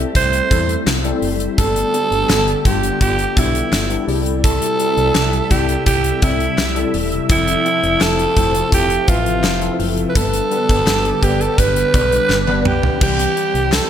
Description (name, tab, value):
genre	1980s-style pop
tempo	84 BPM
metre	4/4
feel	straight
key	C major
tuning	A4 = 440 Hz
part	tine electric piano	accompaniment	0.0-13.9 s	E3 to E5	-22 LUFS	left 5 dB	ensemble chorus, shimmer reverb
part	phased analog pad	sustained chords	0.0-13.9 s	C3 to E5	-27 LUFS	right 2 dB	phaser, chorus, shimmer reverb
part	solid FM bass	bass	0.0-13.8 s	E1 to E2	-22 LUFS	equal	none
part	raspy alto saxophone	melody	0.2-13.9 s	E4 to C5	-18 LUFS	right 3 dB	shimmer reverb, ping-pong delay
part	gated 80s drum kit	drums	0.2-13.9 s	crash cymbal, hi-hat, kick drum, snare drum, tambourine, toms	-18 LUFS	equal	none
part	group handclap	percussion	0.9-13.9 s	none	-33 LUFS	left 9 dB	none
room	moderate plate reverb, RT60 1.5 s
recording	bright 1980s-style digital production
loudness	-14 LUFS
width	side -9 dB against mid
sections	0.0-13.0 A section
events	drum fill 12.3-13.0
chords	0.0 C6; 1.6 Gadd9; 4.1 C6; 7.3 Fmaj7; 10.2 G; 13.0 C